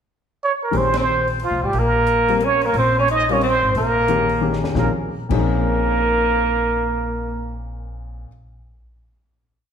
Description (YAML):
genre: modal jazz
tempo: 179 BPM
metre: 3/4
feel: swing 64% on 8ths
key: Bb dorian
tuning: A4 = 440 Hz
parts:
  - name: trumpet with plunger mute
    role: melody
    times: 0.4-7.5 s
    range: F4 to Eb5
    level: -19 LUFS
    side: right 4 dB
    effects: none
  - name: bright alto saxophone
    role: second line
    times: 0.7-7.5 s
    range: F3 to Eb4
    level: -24 LUFS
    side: left 5 dB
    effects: none
  - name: warm baby grand piano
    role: accompaniment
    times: 0.7-8.3 s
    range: Bb2 to Bb4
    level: -25 LUFS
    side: left 5 dB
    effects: none
  - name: upright bass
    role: bass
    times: 0.7-8.2 s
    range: Ab1 to F2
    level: -24 LUFS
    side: equal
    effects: none
  - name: compact cocktail drum kit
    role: drums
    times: 0.7-5.4 s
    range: crash cymbal, hi-hat, kick drum, ride cymbal, snare drum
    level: -31 LUFS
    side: left 1 dB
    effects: none
room: wet recital hall reverb, RT60 1.5 s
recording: recorded in a church or concert hall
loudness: -16 LUFS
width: side -7 dB against mid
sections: 0.0-0.7 pickup bar; 0.7-4.8 A section; 4.8-6.8 final chord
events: band accent 0.9; drum fill 4.4-4.8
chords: 0.0 N.C.; 0.7 Bbm11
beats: 0.05 0.39 | 0.73 1.06 1.40 | 1.73 2.07 2.40 | 2.74 3.08 3.41 | 3.75 4.08 4.42 | 4.76 5.09 5.43 | 5.76 6.10 6.44